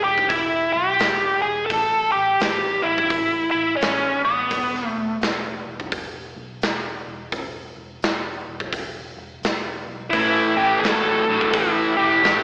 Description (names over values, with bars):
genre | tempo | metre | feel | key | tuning
blues rock power trio and southern rock | 86 BPM | 4/4 | swing 65% on 8ths | unclear | A4 = 440 Hz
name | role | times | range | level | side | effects
biting lead guitar | melody | 0.0-5.2, 10.1-12.4 s | B3 to A4 | -22 LUFS | equal | wah, overdrive, slapback echo
vintage muted fingered electric bass | bass | 0.0-12.4 s | E1 to B1 | -43 LUFS | equal | none
big rock drum kit | drums | 0.2-12.4 s | hi-hat, kick drum, snare drum | -28 LUFS | equal | none
distorted electric guitar | riff | 10.1-12.4 s | A2 to F#3 | -23 LUFS | equal | distortion, slapback echo
room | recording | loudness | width
light reverb | live gig heard through the venue's PA, recital hall reverb, AM radio sound | -21 LUFS | mono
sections
0.0-12.4 A section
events
none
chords
0.0 E5; 1.7 A5; 4.5 E5; 10.1 A5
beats
0.30 1.00 | 1.70 2.40 3.11 3.81 | 4.51 5.21 5.91 6.62 | 7.32 8.02 8.72 9.42 | 10.13 10.83 11.53 12.23